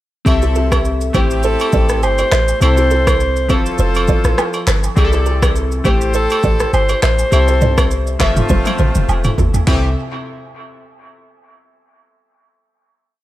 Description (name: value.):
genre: afrobeats.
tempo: 102 BPM.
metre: 4/4.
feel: swing 55% on 16ths.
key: C major.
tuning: A4 = 441 Hz.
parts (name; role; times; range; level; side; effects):
glassy digital keys; accompaniment; 0.2-9.9 s; C3 to E5; -23 LUFS; left 2 dB; chorus, dub echo.
clear horn section; second line; 0.3-9.9 s; E3 to D5; -24 LUFS; left 2 dB; none.
clean 808-style bass; bass; 0.3-9.9 s; E1 to C2; -16 LUFS; equal; none.
deep house drum kit; drums; 0.3-9.8 s; handclaps, kick drum, rim click, shaker, toms; -17 LUFS; equal; overdrive.
agogo bells and woodblock; percussion; 0.3-9.9 s; none; -26 LUFS; right 4 dB; dub echo.
kalimba; riff; 0.4-9.8 s; E4 to E5; -26 LUFS; right 7 dB; none.
breathy alto saxophone; melody; 1.1-8.2 s; G4 to C5; -19 LUFS; equal; dub echo.
room: light reverb, studio reverb.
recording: echo-heavy mix.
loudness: -12 LUFS.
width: side -15 dB against mid.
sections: 0.3-9.7 chorus; 9.7-12.0 final chord.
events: drum fill 8.5-9.7.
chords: 0.3 C6; 1.1 Am7; 2.6 C6; 3.5 Fmaj7; 5.0 C6; 5.9 Am7; 7.3 C6; 8.2 Fmaj7; 9.7 C6.